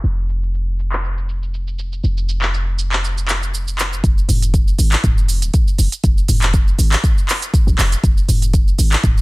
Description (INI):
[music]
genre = afro house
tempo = 120 BPM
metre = 4/4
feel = swing 54% on 16ths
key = F minor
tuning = A4 = 440 Hz
[part]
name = warm 808-style bass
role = bass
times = 0.0-9.2 s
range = Eb1 to Bb1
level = -18 LUFS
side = equal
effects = sidechain pumping
[part]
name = afro-pop drum kit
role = drums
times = 0.0-9.2 s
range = handclaps, hi-hat, shaker, toms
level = -21 LUFS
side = equal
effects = none
[part]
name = electronic kick drum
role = drums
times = 4.0-9.1 s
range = none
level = -15 LUFS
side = equal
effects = none
[sound]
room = digital ambience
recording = dense, heavily limited modern master, low-pass filter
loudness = -14 LUFS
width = side -22 dB against mid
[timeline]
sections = 0.0-4.0 A section; 4.0-9.2 B section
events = filter sweep 0.0-4.0; drop 4.0-9.2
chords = none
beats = | 0.04 0.54 1.04 1.54 | 2.04 2.54 3.04 3.54 | 4.04 4.54 5.04 5.54 | 6.04 6.54 7.04 7.54 | 8.04 8.54 9.04